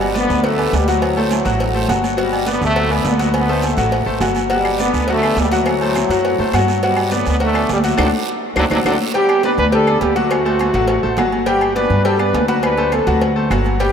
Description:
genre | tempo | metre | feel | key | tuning
latin, salsa | 207 BPM | 4/4 | straight | G major | A4 = 441 Hz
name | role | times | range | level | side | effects
bright trombone section | melody | 0.0-13.9 s | A2 to B4 | -19 LUFS | equal | none
bright grand piano | accompaniment | 0.0-13.9 s | F#3 to G5 | -19 LUFS | left 2 dB | none
upright bass | bass | 0.0-13.9 s | G1 to G2 | -20 LUFS | equal | none
agogo bells and timbales | percussion | 0.0-13.9 s | none | -26 LUFS | right 6 dB | none
congas | percussion | 0.0-13.9 s | none | -27 LUFS | equal | none
cowbell | percussion | 0.2-13.9 s | none | -27 LUFS | left 2 dB | none
guiro | percussion | 0.2-8.9, 13.8-13.9 s | none | -31 LUFS | right 8 dB | none
claves | percussion | 4.6-13.7 s | none | -32 LUFS | left 8 dB | none
room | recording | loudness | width
wet cathedral reverb, RT60 6.3 s | in a vast, echoing space | -14 LUFS | side -7 dB against mid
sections
0.0-9.1 A section; 9.1-13.9 A section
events
band accent 8.0-9.1; drum fill 8.3-9.1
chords
0.0 Gmaj7; 1.0 D7; 2.2 Gmaj7; 3.3 D7; 4.5 Gmaj7; 5.7 D7; 6.8 Gmaj7; 8.0 D7; 9.1 Gmaj7; 10.3 D7; 11.5 Gmaj7; 12.6 D7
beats
0.16 0.45 0.73 | 1.02 1.31 1.60 1.89 | 2.18 2.47 2.76 3.05 | 3.34 3.63 3.92 4.21 | 4.50 4.79 5.08 5.37 | 5.66 5.95 6.24 6.54 | 6.83 7.12 7.41 7.70 | 7.99 8.28 8.57 8.86 | 9.15 9.44 9.73 10.02 | 10.31 10.60 10.89 11.18 | 11.47 11.76 12.05 12.34 | 12.63 12.93 13.22 13.51 | 13.80

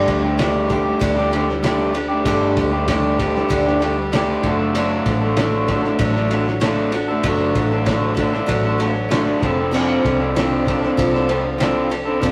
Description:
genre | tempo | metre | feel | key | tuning
folk rock and heartland rock | 96 BPM | 4/4 | straight | unclear | A4 = 440 Hz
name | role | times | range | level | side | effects
picked steel-string acoustic guitar | accompaniment | 0.0-12.3 s | G2 to A4 | -25 LUFS | equal | none
electric guitar through a small old amp | riff | 0.0-12.3 s | F3 to A4 | -22 LUFS | equal | none
vintage muted fingered electric bass | bass | 0.0-12.3 s | F1 to D2 | -28 LUFS | equal | none
cloth-damped thuddy drum kit | drums | 0.1-12.3 s | crash cymbal, kick drum, ride cymbal, snare drum | -26 LUFS | equal | none
room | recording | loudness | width
moderate stone room reverb, RT60 1.3 s | rough rehearsal-room recording, tube saturation | -19 LUFS | mono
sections
0.0-12.3 A section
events
none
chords
0.0 Gsus2; 4.4 D/F#; 9.4 F6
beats
0.39 1.02 1.64 | 2.27 2.89 3.51 4.14 | 4.76 5.38 6.00 6.63 | 7.25 7.87 8.49 9.12 | 9.74 10.36 10.98 11.61 | 12.23

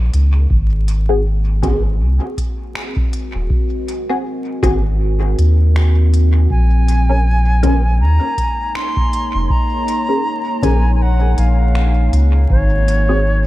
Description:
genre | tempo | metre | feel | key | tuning
ambient dub | 80 BPM | 4/4 | swing 57% on 16ths | Bb minor | A4 = 440 Hz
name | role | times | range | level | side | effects
deep dark ambient pad | sustained chords | 0.0-13.5 s | Ab3 to Ab5 | -26 LUFS | equal | chorus, built-in reverb
soft dub sub bass | bass | 0.0-13.5 s | Eb1 to Eb2 | -13 LUFS | equal | none
organic electronic drum kit | drums | 0.1-13.1 s | congas, finger snaps, hi-hat | -29 LUFS | right 2 dB | dub echo
electronic kick drum | drums | 0.5-12.7 s | none | -19 LUFS | equal | none
filtered dub chord stab | stabs | 1.1-13.2 s | C4 to Bb4 | -22 LUFS | left 2 dB | phaser, ensemble chorus, dub echo
bright reedy wooden flute | melody | 6.5-13.5 s | Db5 to C6 | -21 LUFS | equal | dub echo
room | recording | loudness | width
digital ambience | echo-heavy mix, vinyl crackle | -13 LUFS | side -16 dB against mid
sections
0.0-13.5 A section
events
fade-in on ambient pad 0.0-13.5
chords
0.0 Bbm7; 0.5 Ab7; 6.5 Bbm7; 12.5 Ab7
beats
| 0.51 1.26 2.01 2.76 | 3.51 4.26 5.01 5.76 | 6.51 7.26 8.01 8.76 | 9.51 10.26 11.01 11.76 | 12.51 13.26

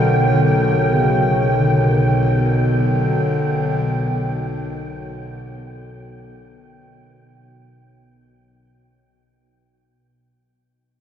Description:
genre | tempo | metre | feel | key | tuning
dark ambient drone | free time | none | none | unclear | A4 = 439 Hz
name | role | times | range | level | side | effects
mellow bass clarinet | melody | 0.0-7.8 s | C#3 to D3 | -20 LUFS | equal | shimmer reverb, diffuse ambient delay
dark analog pad | sustained chords | 0.0-9.1 s | Bb4 to G5 | -24 LUFS | equal | chorus, shimmer reverb
bowed-like drone | drone | 0.0-9.2 s | B1 to B2 | -21 LUFS | equal | built-in reverb
wind-like tuned noise texture | texture | 0.0-9.1 s | G5 | -27 LUFS | right 3 dB | built-in reverb, shimmer reverb
room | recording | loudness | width
wet cathedral reverb, RT60 5.3 s | nothing above 11.0 kHz | -15 LUFS | side -9 dB against mid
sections
0.0-9.1 A section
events
fade-out 0.0-9.1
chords
0.0 Gm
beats
free time

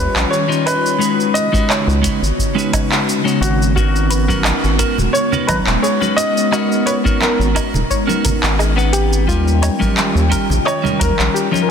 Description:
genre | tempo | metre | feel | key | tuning
sunset chillout | 87 BPM | 4/4 | swing 54% on 16ths | G# dorian | A4 = 442 Hz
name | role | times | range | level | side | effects
dark baby grand piano | melody | 0.0-11.7 s | F#4 to D#5 | -21 LUFS | right 1 dB | ping-pong delay
clean electric guitar | accompaniment | 0.0-11.7 s | E#3 to F#5 | -20 LUFS | moving between left 9 dB and right 6 dB | auto-pan, ping-pong delay
ethereal airy pad | sustained chords | 0.0-11.7 s | C#3 to G5 | -21 LUFS | equal | ensemble chorus, built-in reverb
round analog bass | bass | 0.0-11.3 s | D#1 to D#2 | -17 LUFS | equal | none
deep house drum kit | drums | 0.2-11.7 s | cabasa, handclaps, hi-hat, woodblock | -21 LUFS | right 1 dB | overdrive, studio reverb
electronic kick drum | drums | 1.5-11.2 s | none | -21 LUFS | equal | studio reverb
soft round pluck | arpeggios | 3.8-11.7 s | E#4 to A#5 | -27 LUFS | left 3 dB | chorus, ping-pong delay
congas | percussion | 4.3-11.7 s | none | -25 LUFS | right 2 dB | none
room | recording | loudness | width
moderate lush hall reverb, RT60 2.9 s | dense, heavily limited modern master | -13 LUFS | side -7 dB against mid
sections
0.0-11.7 A section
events
none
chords
0.0 D#9; 1.0 C#9sus4; 3.8 G#m11; 9.3 D#9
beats
0.31 | 1.00 1.69 2.38 3.07 | 3.76 4.45 5.14 5.83 | 6.52 7.21 7.90 8.59 | 9.28 9.97 10.66 11.35

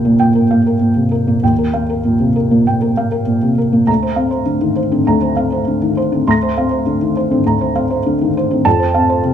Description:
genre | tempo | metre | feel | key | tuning
neoclassical minimalist piano | 100 BPM | 4/4 | rubato | Bb major | A4 = 440 Hz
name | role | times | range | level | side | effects
felt-muted upright piano | solo | 0.0-9.3 s | D2 to Bb6 | -12 LUFS | equal | none
room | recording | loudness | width
light reverb | band playing live in one room | -12 LUFS | side -9 dB against mid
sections
0.0-9.3 A section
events
none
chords
0.0 Ebadd9; 3.9 Bbadd9/D; 8.7 F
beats
0.18 0.80 | 1.42 2.04 2.67 3.28 | 3.88 4.48 5.08 5.68 | 6.27 6.86 7.46 8.05 | 8.65 9.25

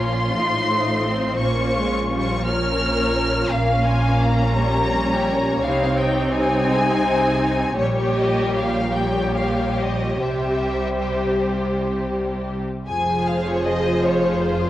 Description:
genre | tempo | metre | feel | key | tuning
classical, slow romantic movement for string orchestra | 44-58 BPM (dotted quarters) | 6/8 | rubato | F minor | A4 = 439 Hz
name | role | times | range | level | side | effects
rich symphonic violin section | melody | 0.0-14.7 s | C5 to F6 | -25 LUFS | left 1 dB | none
warm symphonic violin section | second line | 0.0-14.7 s | G3 to F5 | -25 LUFS | left 1 dB | none
clear symphonic viola section | accompaniment | 0.0-14.7 s | F3 to Ab4 | -24 LUFS | equal | none
clear symphonic cello section | bass | 0.0-14.7 s | F2 to C3 | -26 LUFS | right 1 dB | none
rich symphonic double bass section | bass | 0.0-14.7 s | F1 to C2 | -26 LUFS | right 1 dB | none
room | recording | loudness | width
wet recital hall reverb, RT60 1.4 s | worn, warbling old tape, cassette tape, warbly pitch drift | -18 LUFS | side -14 dB against mid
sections
0.0-12.9 A section; 12.9-14.7 B section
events
none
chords
0.3 F7/A; 1.4 Bbm; 4.6 Gdim/Bb; 5.6 Cm; 7.8 Gdim/Bb; 10.2 C; 12.9 Fm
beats
0.33 | 1.40 2.47 | 3.53 4.58 | 5.63 6.68 | 7.77 8.93 | 10.21 11.55 | 12.87 14.03

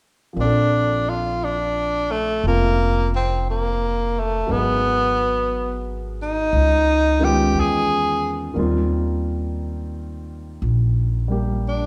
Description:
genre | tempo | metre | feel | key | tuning
jazz ballad | 59 BPM | 4/4 | swing 66% on 8ths | Bb major | A4 = 439 Hz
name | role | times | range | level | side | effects
clear concert grand piano | accompaniment | 0.3-11.9 s | Bb2 to Bb4 | -29 LUFS | equal | none
breathy tenor saxophone | melody | 0.4-11.9 s | A3 to Ab4 | -22 LUFS | equal | none
upright bass | bass | 0.4-11.9 s | F1 to E2 | -25 LUFS | equal | none
room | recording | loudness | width
wet recital hall reverb, RT60 1.6 s | recorded in a church or concert hall | -21 LUFS | mono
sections
0.4-11.9 A section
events
none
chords
0.4 Bbmaj7; 4.5 Abm7; 6.5 Db9; 8.6 Eb69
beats
| 0.38 1.42 2.45 3.47 | 4.49 5.51 6.53 7.55 | 8.58 9.60 10.62 11.65

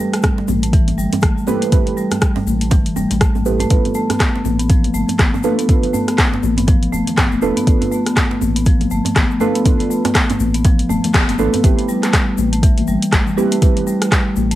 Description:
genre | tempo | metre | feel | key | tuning
afro house | 121 BPM | 4/4 | swing 59% on 16ths | A minor | A4 = 441 Hz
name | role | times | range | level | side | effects
marimba with medium mallets | arpeggios | 0.0-14.6 s | E3 to A4 | -19 LUFS | equal | sidechain pumping, tape echo
deep mellow chord stab | stabs | 0.0-14.6 s | C4 to B4 | -23 LUFS | right 8 dB | chorus, sidechain pumping, tape echo
afro-pop drum kit | drums | 0.1-14.6 s | handclaps, hi-hat, rim click | -20 LUFS | equal | cassette tape
egg shaker | percussion | 0.1-14.6 s | none | -36 LUFS | left 10 dB | none
electronic kick drum | drums | 0.2-14.2 s | none | -15 LUFS | equal | cassette tape
djembe | percussion | 0.2-11.6 s | none | -27 LUFS | right 5 dB | none
warm sub bass | bass | 0.5-14.6 s | E1 to A1 | -21 LUFS | equal | sidechain pumping
congas | percussion | 0.5-14.5 s | none | -25 LUFS | left 9 dB | none
room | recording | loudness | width
light reverb | home recording on cassette | -13 LUFS | side -14 dB against mid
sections
0.0-11.6 A section; 11.6-14.6 B section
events
band accent 11.1; drop 11.6-14.6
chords
0.0 Am7; 3.7 Bm7b5; 11.6 Am7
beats
0.23 0.73 1.23 | 1.72 2.22 2.71 3.21 | 3.71 4.20 4.70 5.19 | 5.69 6.18 6.68 7.18 | 7.67 8.17 8.66 9.16 | 9.66 10.15 10.65 11.14 | 11.64 12.13 12.63 13.13 | 13.62 14.12

